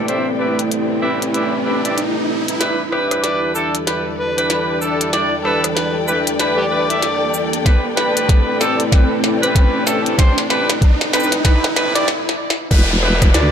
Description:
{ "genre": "glitch hop", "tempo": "95 BPM", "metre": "4/4", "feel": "swing 61% on 16ths", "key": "E minor", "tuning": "A4 = 441 Hz", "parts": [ { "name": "dark analog pad", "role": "sustained chords", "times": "0.0-13.5 s", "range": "E3 to D5", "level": "-24 LUFS", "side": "equal", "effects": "chorus, vintage 12-bit sampler grit, sidechain pumping" }, { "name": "clear horn section", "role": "stabs", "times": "0.0-13.5 s", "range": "A2 to E5", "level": "-20 LUFS", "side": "equal", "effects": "vintage 12-bit sampler grit, sidechain pumping, tape echo" }, { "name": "riser and downlifter", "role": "sound effects", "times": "0.1-13.5 s", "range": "none", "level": "-24 LUFS", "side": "right 1 dB", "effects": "none" }, { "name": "dark symphonic string section", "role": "texture", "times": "0.0-12.1 s", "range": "E4 to G5", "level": "-25 LUFS", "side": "left 3 dB", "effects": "sidechain pumping" }, { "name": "glitchy drum kit", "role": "drums", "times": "0.1-13.5 s", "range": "crash cymbal, hi-hat, rim click, shaker, snare drum", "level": "-21 LUFS", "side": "equal", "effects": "high-pass filter on hats, high-pass filter on snare, high-pass filter on perc, high-pass filter on cymbals, high-pass filter on room" }, { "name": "overdriven harmonica", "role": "melody", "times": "3.2-7.5, 13.3-13.5 s", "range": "G4 to D5", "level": "-24 LUFS", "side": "equal", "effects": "tape echo" }, { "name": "electronic kick drum", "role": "drums", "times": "7.7-13.3 s", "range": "none", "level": "-12 LUFS", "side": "equal", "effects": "overdrive" }, { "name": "formant-sweep wobble bass", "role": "bass", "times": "12.7-13.5 s", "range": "E1 to D2", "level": "-16 LUFS", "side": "equal", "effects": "chorus, tube saturation" } ], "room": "light reverb, digital ambience", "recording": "none", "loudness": "-14 LUFS", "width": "side -8 dB against mid", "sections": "0.0-2.6 A section; 2.6-12.7 B section", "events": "riser 0.1-2.6, 2.6-12.1; build-up 2.6-12.7; drum fill 2.6-12.1, 12.1-12.7; stop 12.1-12.7", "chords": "0.0 Am11; 2.6 Em7; 7.7 Am11; 12.7 Em7" }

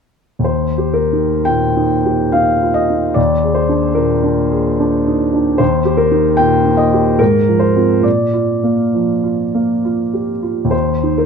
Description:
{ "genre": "classical, romantic character piece for solo piano", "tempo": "56-77 BPM", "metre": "3/4", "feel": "rubato", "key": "Eb major", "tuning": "A4 = 440 Hz", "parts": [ { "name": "clear grand piano", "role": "solo", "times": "0.4-11.3 s", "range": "Eb2 to G5", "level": "-12 LUFS", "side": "equal", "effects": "none" } ], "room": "light reverb", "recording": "dark, warm production", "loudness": "-12 LUFS", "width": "side -6 dB against mid", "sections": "0.5-11.3 A section", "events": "none", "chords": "0.5 Eb; 3.2 Bb7/Eb; 5.6 Eb; 7.2 Fm/Ab; 8.0 Bb; 10.7 Eb5" }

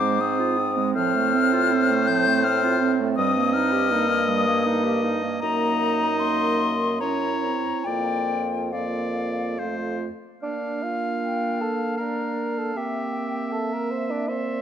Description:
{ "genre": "classical, slow romantic movement for wind quintet", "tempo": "68-82 BPM", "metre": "3/4", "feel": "rubato", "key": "Bb major", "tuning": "A4 = 440 Hz", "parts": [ { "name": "hollow concert flute", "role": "melody", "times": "0.0-14.6 s", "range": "D5 to G6", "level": "-26 LUFS", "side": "left 7 dB", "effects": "none" }, { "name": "bright oboe", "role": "second line", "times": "0.0-14.6 s", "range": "C5 to F5", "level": "-30 LUFS", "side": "left 4 dB", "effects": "none" }, { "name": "mellow French horn", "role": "accompaniment", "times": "0.0-14.6 s", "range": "A3 to Db4", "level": "-27 LUFS", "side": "right 2 dB", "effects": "none" }, { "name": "mellow clarinet", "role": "accompaniment", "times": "0.0-14.6 s", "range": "F3 to G4", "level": "-30 LUFS", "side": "right 10 dB", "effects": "none" }, { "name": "mellow bassoon", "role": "bass", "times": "0.0-14.6 s", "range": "F2 to C5", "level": "-28 LUFS", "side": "right 2 dB", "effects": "none" } ], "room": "moderate concert hall reverb, RT60 2.0 s", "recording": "close, detailed microphones", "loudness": "-21 LUFS", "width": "side -8 dB against mid", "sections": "0.0-10.4 A section; 10.4-14.6 B section", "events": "none", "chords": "0.0 Fm/Ab; 1.0 F/A; 3.2 Eb/G; 5.4 Ebm/Gb; 7.0 Gb7; 7.8 Bb/F; 9.6 F; 10.4 Bb; 12.8 C7/Bb" }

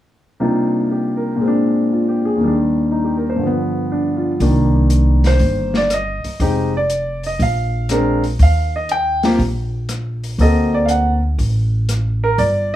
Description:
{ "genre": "jazz piano trio", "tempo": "120 BPM", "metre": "4/4", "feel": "swing 69% on 8ths", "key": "C minor", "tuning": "A4 = 440 Hz", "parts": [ { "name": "warm concert grand piano", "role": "melody", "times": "0.4-12.7 s", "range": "Eb2 to G5", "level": "-16 LUFS", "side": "equal", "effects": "none" }, { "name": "upright bass", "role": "bass", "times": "4.4-12.8 s", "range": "F1 to Eb2", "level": "-17 LUFS", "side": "equal", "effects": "none" }, { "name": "open jazz drum kit", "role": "drums", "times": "4.4-12.6 s", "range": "hi-hat, kick drum, rim click, snare drum", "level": "-24 LUFS", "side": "left 1 dB", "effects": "none" } ], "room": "light reverb", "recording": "small room ambience", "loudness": "-15 LUFS", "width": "side -13 dB against mid", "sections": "0.4-4.4 A section; 4.4-12.8 B section", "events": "none", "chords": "0.4 Cm11; 1.4 Bb9; 2.4 Ebmaj7; 3.4 G7; 4.4 Cm7; 6.4 Fm9; 7.4 Bb9; 8.4 Ebadd9; 10.4 D7b13" }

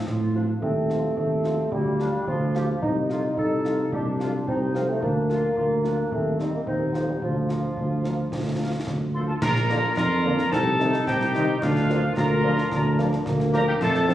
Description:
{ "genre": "military-style march for wind band", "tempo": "109 BPM", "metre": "2/4", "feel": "straight", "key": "Bb major", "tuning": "A4 = 439 Hz", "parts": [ { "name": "clear euphonium", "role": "second line", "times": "0.0-14.1 s", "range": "F3 to Eb4", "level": "-27 LUFS", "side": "equal", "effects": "none" }, { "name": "mellow woodwind section", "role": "second line", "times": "0.0-14.1 s", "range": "Bb3 to A4", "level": "-32 LUFS", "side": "left 1 dB", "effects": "none" }, { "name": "mellow tuba", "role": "bass", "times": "0.1-14.1 s", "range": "Bb1 to A2", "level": "-25 LUFS", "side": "right 1 dB", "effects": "none" }, { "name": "concert snare drum, concert bass drum and clash cymbals", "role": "drums", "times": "0.1-14.1 s", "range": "none", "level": "-34 LUFS", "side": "left 1 dB", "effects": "none" }, { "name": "mellow trumpet section", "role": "melody", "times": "0.3-14.1 s", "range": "F4 to F5", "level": "-31 LUFS", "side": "equal", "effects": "none" }, { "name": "mellow French horn section", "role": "accompaniment", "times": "0.3-14.1 s", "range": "Eb3 to F4", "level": "-35 LUFS", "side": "left 3 dB", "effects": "none" }, { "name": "wooden piccolo", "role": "second line", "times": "9.1-14.1 s", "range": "F5 to C6", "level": "-27 LUFS", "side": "left 1 dB", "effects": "none" }, { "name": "dark trombone section", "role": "sustained chords", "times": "9.7-14.1 s", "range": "D3 to C4", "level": "-31 LUFS", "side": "equal", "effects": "none" } ], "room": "moderate scoring stage reverb, RT60 1.6 s", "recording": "recorded on a phone in the room, club reverb, compression", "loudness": "-21 LUFS", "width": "side -13 dB against mid", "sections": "0.0-9.4 A section; 9.4-14.1 A section", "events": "none", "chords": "0.0 F/A; 0.6 F7/Eb; 1.7 Bb/D; 2.8 F7/C; 5.0 Bb/D; 6.1 Cm7/Eb; 6.7 F7/Eb; 7.2 Bb/D; 9.4 Bb; 10.5 Adim/C; 11.6 Bb/D" }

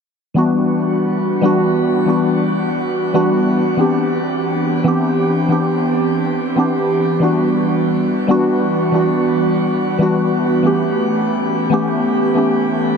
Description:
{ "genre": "future bass", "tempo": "140 BPM", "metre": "4/4", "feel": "swing 54% on 16ths, half-time", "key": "E minor", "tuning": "A4 = 440 Hz", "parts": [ { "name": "glassy digital keys", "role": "accompaniment", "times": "0.3-13.0 s", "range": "E3 to G4", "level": "-14 LUFS", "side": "equal", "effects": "chorus, tape echo" } ], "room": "wet shimmer reverb, RT60 6.2 s", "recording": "dense, heavily limited modern master", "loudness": "-14 LUFS", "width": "side -6 dB against mid", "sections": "0.4-13.0 A section", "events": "none", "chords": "0.4 Em9; 3.6 Cmaj9; 7.2 Em9; 10.6 A9" }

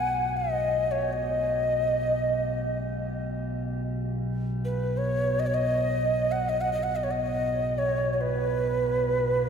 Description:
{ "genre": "world meditative, free-time meditation music", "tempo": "free time", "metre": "none", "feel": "none", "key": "B major pentatonic", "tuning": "A4 = 440 Hz", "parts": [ { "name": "breathy mellow Native American-style cedar flute", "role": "melody", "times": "0.0-9.5 s", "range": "B4 to F#5", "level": "-26 LUFS", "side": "equal", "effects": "ping-pong delay" }, { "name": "metallic inharmonic drone", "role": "drone", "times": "0.0-9.5 s", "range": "B1 to B2", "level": "-30 LUFS", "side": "equal", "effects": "chorus, built-in reverb" } ], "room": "wet lush hall reverb, RT60 2.5 s", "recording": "dreamy mix soaked in reverb", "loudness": "-24 LUFS", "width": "side -7 dB against mid", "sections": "0.0-9.5 A section", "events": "none", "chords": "none" }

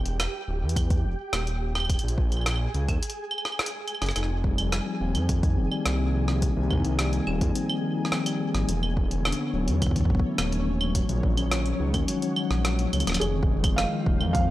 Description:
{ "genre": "IDM", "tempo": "106 BPM", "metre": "4/4", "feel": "straight", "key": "unclear", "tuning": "A4 = 440 Hz", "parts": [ { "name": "dark detuned saw bass", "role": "bass", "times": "0.0-14.5 s", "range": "D1 to F2", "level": "-26 LUFS", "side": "equal", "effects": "transformer saturation" }, { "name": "flickering grainy texture", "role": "texture", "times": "0.0-14.5 s", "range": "Db4 to Ab5", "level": "-37 LUFS", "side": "right 1 dB", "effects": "built-in reverb, sidechain pumping" }, { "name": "jungle sampler-style drum kit", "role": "drums", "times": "0.1-14.5 s", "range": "claves, hi-hat, rim click", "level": "-30 LUFS", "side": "right 1 dB", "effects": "studio reverb" }, { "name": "electronic kick drum", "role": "drums", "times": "0.8-14.5 s", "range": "none", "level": "-26 LUFS", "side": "equal", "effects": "studio reverb" }, { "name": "glassy FM pad", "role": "sustained chords", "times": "4.9-14.5 s", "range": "D3 to Ab5", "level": "-35 LUFS", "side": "left 1 dB", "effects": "ensemble chorus, built-in reverb" }, { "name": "mellow tine electric piano", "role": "arpeggios", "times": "4.2-14.5 s", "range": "D3 to Eb4", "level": "-29 LUFS", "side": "left 3 dB", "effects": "medium stereo tremolo, analog delay" }, { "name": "felt-muted upright piano", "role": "melody", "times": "13.2-14.5 s", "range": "Ab4 to F5", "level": "-30 LUFS", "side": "right 2 dB", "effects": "tape echo" } ], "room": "light reverb", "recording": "dry, gritty hardware recording", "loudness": "-23 LUFS", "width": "side -15 dB against mid", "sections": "0.0-13.2 A section; 13.2-14.5 B section", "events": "drum fill 12.9", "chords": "0.0 Em7; 1.6 Eb7(no3); 4.2 Fm9; 8.7 Esus2; 10.7 Ebm9; 13.2 Fm9" }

